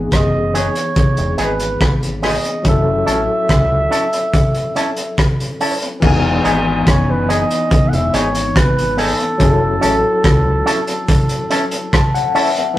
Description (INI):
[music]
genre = lovers rock reggae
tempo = 71 BPM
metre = 4/4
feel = straight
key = E major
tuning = A4 = 440 Hz
[part]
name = overdriven tine electric piano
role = accompaniment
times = 0.0-12.8 s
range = E3 to A5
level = -20 LUFS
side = left 3 dB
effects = fast tremolo, tape echo
[part]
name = deep dub fingered electric bass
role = bass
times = 0.0-10.6 s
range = E1 to C#2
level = -22 LUFS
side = equal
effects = none
[part]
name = breathy flugelhorn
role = melody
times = 0.1-12.4 s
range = A4 to F#5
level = -20 LUFS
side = right 1 dB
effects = none
[part]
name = crunchy breakbeat drum kit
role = drums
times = 0.1-12.8 s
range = crash cymbal, hi-hat, kick drum, rim click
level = -16 LUFS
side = equal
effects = none
[part]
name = electric guitar with an envelope filter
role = stabs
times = 0.5-12.5 s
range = B3 to A4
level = -19 LUFS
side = equal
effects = none
[sound]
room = moderate studio reverb, RT60 0.6 s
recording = rough rehearsal-room recording, tube saturation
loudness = -13 LUFS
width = side -14 dB against mid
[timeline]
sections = 0.0-6.0 A section; 6.0-12.8 B section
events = tine electric piano fill 11.5-12.8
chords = 0.0 Emaj7; 2.6 F#m7; 6.0 Emaj7; 9.4 F#m7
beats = 0.12 0.96 1.81 | 2.65 3.49 4.34 5.18 | 6.02 6.87 7.71 8.55 | 9.40 10.24 11.09 11.93 | 12.77